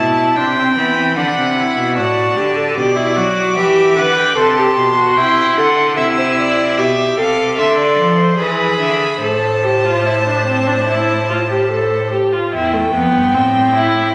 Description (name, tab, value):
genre	classical, baroque-style fugue for string quartet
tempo	75 BPM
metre	4/4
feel	straight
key	A minor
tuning	A4 = 440 Hz
part	rich violin	melody	0.0-14.1 s	G5 to E6	-21 LUFS	equal	none
part	rich violin	second line	0.0-12.1 s	B4 to A5	-21 LUFS	equal	none
part	rich viola	accompaniment	0.0-14.1 s	A3 to B4	-18 LUFS	equal	none
part	rich cello	bass	0.0-14.1 s	E2 to F#3	-22 LUFS	equal	none
room	wet scoring stage reverb, RT60 1.6 s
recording	none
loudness	-15 LUFS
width	mono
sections	0.0-12.5 A section; 12.5-14.1 B section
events	none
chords	0.0 Am; 1.2 D; 2.8 G/B; 4.4 C; 6.0 Am/C; 7.6 Dm; 8.4 E7; 9.2 Am; 12.5 Am/E